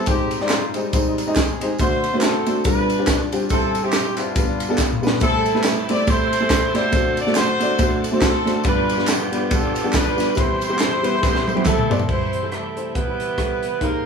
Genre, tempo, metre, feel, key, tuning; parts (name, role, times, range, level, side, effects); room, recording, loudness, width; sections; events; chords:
uptempo gospel; 140 BPM; 4/4; swing 57% on 8ths; C major; A4 = 440 Hz
warm horn section; melody; 0.0-14.1 s; G3 to D5; -22 LUFS; equal
warm upright piano; accompaniment; 0.0-14.1 s; G1 to C6; -22 LUFS; left 1 dB
crisp fusion drum kit; drums; 0.1-13.9 s; crash cymbal, hi-hat, kick drum, ride cymbal, rim click, snare drum, toms; -22 LUFS; equal
tambourine and handclaps; percussion; 0.1-12.0 s; -30 LUFS; right 3 dB
bright tonewheel organ; sustained chords; 5.2-14.1 s; C3 to G5; -31 LUFS; right 2 dB; slow rotary speaker, overdrive
breathy tenor saxophone; melody; 11.7-14.1 s; A3 to C4; -27 LUFS; right 5 dB
moderate studio reverb, RT60 0.5 s; band playing live in one room, studio ambience; -17 LUFS; side -6 dB against mid
0.0-12.1 A section; 12.1-14.1 B section
drum fill 4.8-5.2, 11.2-12.1; upright piano fill 11.4-12.1
0.1 Abmaj7; 1.8 D7; 2.6 G9sus4; 3.5 C/G; 4.4 G7; 5.2 C6; 6.9 D7; 8.6 G7; 10.4 Cmaj7